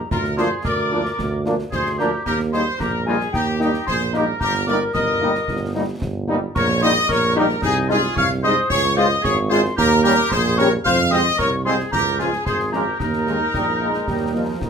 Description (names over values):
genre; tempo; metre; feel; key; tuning
military-style march for wind band; 112 BPM; 2/4; straight; Eb major; A4 = 439 Hz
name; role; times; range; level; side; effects
mellow hollow piccolo; second line; 0.0-14.7 s; G5 to F6; -26 LUFS; left 3 dB; none
clear trumpet section; melody; 0.1-14.7 s; G4 to F5; -22 LUFS; equal; none
warm woodwind section; second line; 0.1-14.7 s; Eb4 to Db5; -25 LUFS; left 2 dB; none
mellow tuba; bass; 0.1-14.7 s; G1 to F2; -23 LUFS; right 4 dB; none
concert snare drum, concert bass drum and clash cymbals; drums; 0.1-14.7 s; none; -30 LUFS; equal; none
mellow French horn section; accompaniment; 0.4-14.4 s; F3 to G4; -25 LUFS; left 4 dB; none
warm trombone section; sustained chords; 0.4-14.7 s; Eb3 to F4; -25 LUFS; equal; none
room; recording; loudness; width
moderate studio reverb, RT60 0.6 s; none; -17 LUFS; side -6 dB against mid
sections
0.0-14.7 A section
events
none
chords
0.1 Bb/D; 2.3 Eb; 4.4 Eb/G; 6.6 Eb/Bb; 7.6 Ab/C; 8.7 Db; 9.8 Eb7; 10.9 Fm; 11.9 Db; 13.0 Ebsus4; 14.1 Eb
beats
| 0.11 0.65 | 1.19 1.72 | 2.26 2.80 | 3.33 3.87 | 4.41 4.95 | 5.48 6.02 | 6.56 7.09 | 7.63 8.17 | 8.71 9.24 | 9.78 10.32 | 10.86 11.39 | 11.93 12.47 | 13.00 13.54 | 14.08 14.62